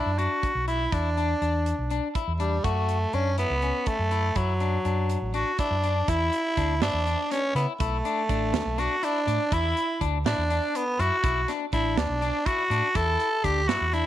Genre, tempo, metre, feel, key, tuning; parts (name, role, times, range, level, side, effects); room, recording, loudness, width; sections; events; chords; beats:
progressive instrumental, band music in an uneven meter; 244 BPM (eighths); 7/8; straight; A4 = 440 Hz
raspy tenor saxophone; melody; 0.0-14.1 s; F#3 to A4; -26 LUFS; right 1 dB
electric guitar at the edge of break-up; arpeggios; 0.0-14.1 s; C#4 to F#4; -32 LUFS; left 8 dB
fingered electric bass; bass; 0.1-14.0 s; A1 to C#3; -27 LUFS; equal
modern studio drum kit; drums; 0.2-14.0 s; hi-hat, kick drum, snare drum; -31 LUFS; right 3 dB
light reverb, small room ambience; 1960s-style stereo; -23 LUFS; side -12 dB against mid
0.0-6.1 A section; 6.1-14.1 B section
0.0 Bm; 0.9 E5; 2.6 F#m7; 4.4 D/F#; 6.1 E7(no3); 7.8 Bm7; 9.5 E7(no3); 11.2 Bm7; 13.0 Em7
0.19 0.43 0.68 | 0.92 1.17 1.42 1.66 1.91 2.15 2.40 | 2.64 2.89 3.13 3.38 3.63 3.87 4.12 | 4.36 4.61 4.85 5.10 5.35 5.59 5.84 | 6.08 6.33 6.57 6.82 7.06 7.31 7.55 | 7.80 8.05 8.29 8.54 8.78 9.03 9.27 | 9.52 9.76 10.01 10.26 10.50 10.74 10.99 | 11.24 11.48 11.73 11.97 12.22 12.46 12.71 | 12.95 13.20 13.44 13.69 13.93